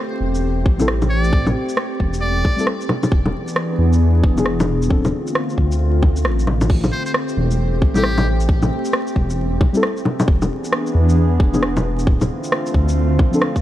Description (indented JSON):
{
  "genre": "future garage",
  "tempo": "134 BPM",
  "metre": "4/4",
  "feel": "swing 64% on 16ths",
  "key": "A minor",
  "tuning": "A4 = 440 Hz",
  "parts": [
    { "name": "warbly tape-like pad", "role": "sustained chords", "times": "0.0-13.6 s", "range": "D3 to G#4", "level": "-23 LUFS", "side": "equal", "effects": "chorus, built-in reverb, sidechain pumping" },
    { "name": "dark detuned saw bass", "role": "bass", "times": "0.2-13.2 s", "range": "D1 to E2", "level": "-18 LUFS", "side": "equal", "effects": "sidechain pumping" },
    { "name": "garage drum kit", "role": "drums", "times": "0.3-13.6 s", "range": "bongos, crash cymbal, rim click, shaker", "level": "-21 LUFS", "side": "equal", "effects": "overdrive, studio reverb" },
    { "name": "electronic kick drum", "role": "drums", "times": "0.7-13.6 s", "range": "none", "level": "-16 LUFS", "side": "equal", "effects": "overdrive, studio reverb" },
    { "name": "muted felt-like synth keys", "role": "accompaniment", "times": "0.8-5.1, 7.9-13.4 s", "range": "E3 to A4", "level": "-24 LUFS", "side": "left 2 dB", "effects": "chorus, vintage 12-bit sampler grit, sidechain pumping, tape echo" },
    { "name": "trumpet with metal mute", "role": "melody", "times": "1.1-2.7, 6.9-8.3 s", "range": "G4 to D5", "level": "-28 LUFS", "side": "equal", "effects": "tape echo" }
  ],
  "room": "little or no reverb",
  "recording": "vinyl crackle",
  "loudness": "-15 LUFS",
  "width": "side -13 dB against mid",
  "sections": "0.0-6.7 A section; 6.7-13.6 B section",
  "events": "none",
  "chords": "0.0 Am7; 3.1 E7; 4.9 Dm7; 6.7 Am7; 10.3 E7; 12.1 Dm7",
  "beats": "0.43 0.88 | 1.32 1.77 2.22 2.67 | 3.12 3.56 4.01 4.46 | 4.91 5.36 5.80 6.25 | 6.70 7.15 7.59 8.04 | 8.49 8.94 9.38 9.83 | 10.28 10.73 11.18 11.62 | 12.07 12.52 12.97 13.41"
}